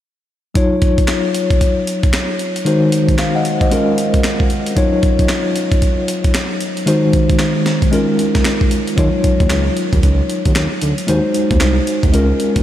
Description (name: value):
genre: R&B, new jack swing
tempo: 114 BPM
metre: 4/4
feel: swing 61% on 16ths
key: Eb dorian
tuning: A4 = 440 Hz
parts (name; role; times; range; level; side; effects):
- tine electric piano; accompaniment; 0.5-12.6 s; Eb3 to Gb5; -16 LUFS; left 1 dB; medium tremolo
- breakbeat sampler-style drum kit; drums; 0.6-12.6 s; handclaps, hi-hat, kick drum, snare drum; -17 LUFS; equal; none
- smooth gliding synth bass; bass; 9.0-12.6 s; C2 to Eb2; -16 LUFS; right 1 dB; none
room: moderate huge ambient reverb, RT60 8.3 s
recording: dreamy mix soaked in reverb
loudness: -13 LUFS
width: side -12 dB against mid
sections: 0.6-9.0 A section; 9.0-12.6 B section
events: none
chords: 0.6 Ebm9; 2.7 Ab7/Eb; 3.7 Db6; 4.8 Ebm9; 6.9 Ab7/Eb; 7.9 Db6; 9.0 Ebm9; 11.1 Ab7/Eb